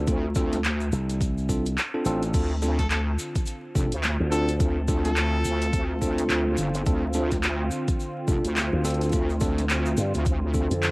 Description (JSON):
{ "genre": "glitch hop", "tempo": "106 BPM", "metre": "4/4", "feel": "swing 59% on 16ths", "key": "D minor", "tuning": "A4 = 440 Hz", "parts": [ { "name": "slap bass with an envelope filter", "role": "bass", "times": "0.0-4.6, 8.7-10.9 s", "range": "A1 to G2", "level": "-25 LUFS", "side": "equal", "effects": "none" }, { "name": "bell-like tine electric piano", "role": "stabs", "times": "0.1-10.7 s", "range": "C4 to A4", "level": "-29 LUFS", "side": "equal", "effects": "sidechain pumping, tape echo" }, { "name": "wobble bass", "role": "bass", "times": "0.1-10.7 s", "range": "F1 to D2", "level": "-26 LUFS", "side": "equal", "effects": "chorus, tube saturation" }, { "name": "drum and bass drum kit", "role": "drums", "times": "0.1-10.9 s", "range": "crash cymbal, handclaps, hi-hat, snare drum", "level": "-30 LUFS", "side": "equal", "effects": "overdrive, cassette tape" }, { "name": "electronic kick drum", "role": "drums", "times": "0.1-10.7 s", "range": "none", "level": "-26 LUFS", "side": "equal", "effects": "overdrive, cassette tape" }, { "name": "tube shaker", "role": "percussion", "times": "0.1-10.9 s", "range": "none", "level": "-40 LUFS", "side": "left 2 dB", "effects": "none" }, { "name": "warm analog pad", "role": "sustained chords", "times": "2.3-10.9 s", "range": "D3 to F4", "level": "-31 LUFS", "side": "right 1 dB", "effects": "chorus, vintage 12-bit sampler grit, sidechain pumping" }, { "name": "brilliant trumpet", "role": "melody", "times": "2.8-5.8 s", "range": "A4", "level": "-33 LUFS", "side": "left 1 dB", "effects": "tape echo" } ], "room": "light reverb, digital ambience", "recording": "home recording on cassette, vinyl crackle", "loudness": "-22 LUFS", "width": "side -24 dB against mid", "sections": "0.0-10.9 A section", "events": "none", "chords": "0.0 Dm7" }